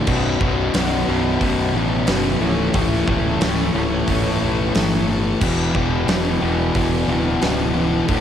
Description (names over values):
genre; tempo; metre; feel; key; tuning
quiet-loud alternative rock; 90 BPM; 4/4; straight; unclear; A4 = 444 Hz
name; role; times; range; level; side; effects
clear symphonic string section; sustained chords; 0.0-8.2 s; E3 to D5; -33 LUFS; right 1 dB; none
fuzz guitar; riff; 0.0-8.2 s; B1 to A3; -21 LUFS; left 8 dB; distortion
overdriven electric guitar; riff; 0.0-8.2 s; B1 to A3; -26 LUFS; right 1 dB; none
thick fuzz guitar; riff; 0.0-8.2 s; B1 to A3; -26 LUFS; right 9 dB; distortion
fuzz fingered electric bass; bass; 0.1-8.2 s; B0 to A1; -24 LUFS; right 1 dB; overdrive
huge arena drum kit; drums; 0.1-8.2 s; crash cymbal, hi-hat, kick drum, snare drum; -24 LUFS; right 1 dB; cassette tape
room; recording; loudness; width
moderate booth ambience, RT60 0.2 s; home recording on cassette; -17 LUFS; side -9 dB against mid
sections
0.0-8.2 A section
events
none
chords
0.0 Bm; 2.4 A/C#; 5.4 Em7